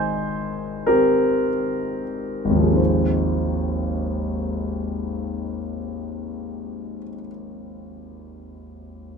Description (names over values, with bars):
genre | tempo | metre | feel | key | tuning
classical, impressionist solo piano | 29-37 BPM (dotted quarters) | 9/8 | rubato | Ab major | A4 = 440 Hz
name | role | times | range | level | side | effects
clear concert grand piano | solo | 0.0-9.2 s | Ab1 to G6 | -22 LUFS | equal | none
room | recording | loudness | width
light reverb | close, detailed microphones | -21 LUFS | side -6 dB against mid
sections
0.0-2.8 A section; 2.8-7.7 B section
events
slowing down 0.0-2.8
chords
0.0 Abmaj7; 2.8 Ab6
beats
0.87 | 2.79 4.44 6.07